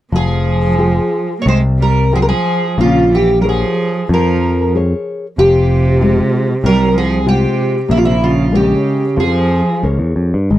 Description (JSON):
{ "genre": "fado-style ballad", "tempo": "92 BPM", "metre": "4/4", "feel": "rubato", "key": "F harmonic minor", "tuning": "A4 = 440 Hz", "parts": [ { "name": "rich cello", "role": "second line", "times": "0.1-10.6 s", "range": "C3 to Bb3", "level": "-18 LUFS", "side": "right 3 dB", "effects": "none" }, { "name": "nylon-string guitar", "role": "accompaniment", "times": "0.1-10.6 s", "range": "C3 to G5", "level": "-19 LUFS", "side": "left 3 dB", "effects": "none" }, { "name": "picked electric bass", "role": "bass", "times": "0.1-10.6 s", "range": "F1 to G2", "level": "-14 LUFS", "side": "equal", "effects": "none" }, { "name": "fingerpicked twelve-string acoustic guitar", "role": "melody", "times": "0.2-9.8 s", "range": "E4 to Db5", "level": "-16 LUFS", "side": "equal", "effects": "lush chorus" } ], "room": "little or no reverb", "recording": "dry, close 1970s-style studio recording", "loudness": "-11 LUFS", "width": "side -14 dB against mid", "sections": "0.1-10.6 A section", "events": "none", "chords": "0.1 Fmadd9; 2.8 Bbm7; 5.4 Fmadd9; 7.9 Bbm7" }